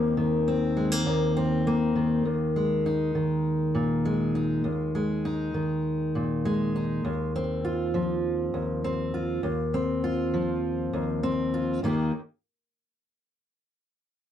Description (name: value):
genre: folk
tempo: 100 BPM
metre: 4/4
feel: straight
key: unclear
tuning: A4 = 441 Hz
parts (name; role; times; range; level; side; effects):
- fingerpicked steel-string acoustic guitar; solo; 0.0-12.1 s; Eb2 to G4; -24 LUFS; equal; slapback echo
room: light reverb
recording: dry, close 1970s-style studio recording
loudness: -24 LUFS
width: side -10 dB against mid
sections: 0.0-2.3 A section; 2.3-11.8 B section; 11.8-14.2 C section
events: none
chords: 0.0 Cm7/Eb; 2.3 Ebsus4; 7.0 Cmadd11/Eb; 11.8 Eb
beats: 0.47 1.06 1.66 | 2.26 2.85 3.45 4.05 | 4.65 5.25 5.85 6.45 | 7.04 7.64 8.24 8.84 | 9.44 10.03 10.63 11.23 | 11.83